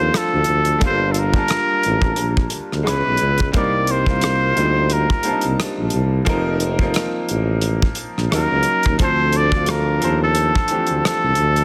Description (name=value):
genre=R&B, neo-soul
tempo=88 BPM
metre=4/4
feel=swing 57% on 16ths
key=C dorian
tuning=A4 = 441 Hz
part: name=trumpet with straight mute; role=melody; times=0.0-11.6 s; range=A4 to D5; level=-22 LUFS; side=equal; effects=none
part: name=bright baby grand piano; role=accompaniment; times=0.0-11.6 s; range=D3 to A5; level=-26 LUFS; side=equal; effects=none
part: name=mellow tuba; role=bass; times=0.0-11.6 s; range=F1 to Eb2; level=-23 LUFS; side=equal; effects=none
part: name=damped 70s drum kit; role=drums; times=0.1-11.6 s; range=hi-hat, kick drum, rim click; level=-24 LUFS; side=equal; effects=soft clipping on snare
room=light reverb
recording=dense, heavily limited modern master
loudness=-18 LUFS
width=mono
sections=0.0-11.6 A section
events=none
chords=0.0 Dm7; 0.8 Gm9; 2.9 Dbm7; 3.5 Cm7; 6.3 F7sus4; 8.3 Ebm7; 9.0 Dm7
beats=0.13 | 0.82 1.50 2.18 2.86 | 3.54 4.22 4.91 5.59 | 6.27 6.95 7.63 8.32 | 9.00 9.68 10.36 11.04